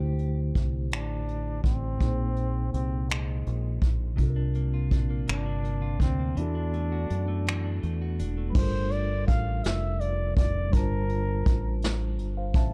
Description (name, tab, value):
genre	slow six-eight R&B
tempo	55 BPM (dotted quarters)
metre	6/8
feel	straight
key	unclear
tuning	A4 = 440 Hz
part	clean electric guitar	second line	0.0-0.4, 4.2-9.1 s	C3 to C5	-39 LUFS	equal	none
part	mellow tine electric piano	accompaniment	0.0-12.7 s	Bb2 to A5	-36 LUFS	equal	none
part	deep dub fingered electric bass	bass	0.0-12.7 s	E1 to F#2	-31 LUFS	equal	none
part	vintage brush drum kit	drums	0.2-12.7 s	crash cymbal, finger snaps, hi-hat, kick drum, snare drum	-28 LUFS	equal	none
part	breathy flugelhorn	melody	0.9-11.8 s	Ab3 to F5	-37 LUFS	equal	none
room	small room ambience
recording	dark, warm production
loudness	-28 LUFS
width	mono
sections	0.0-8.5 A section; 8.5-12.7 B section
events	break 6.4-8.5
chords	0.0 D9sus4; 2.0 Bb9sus4; 4.2 C9sus4; 6.4 E9sus4; 8.5 Gm9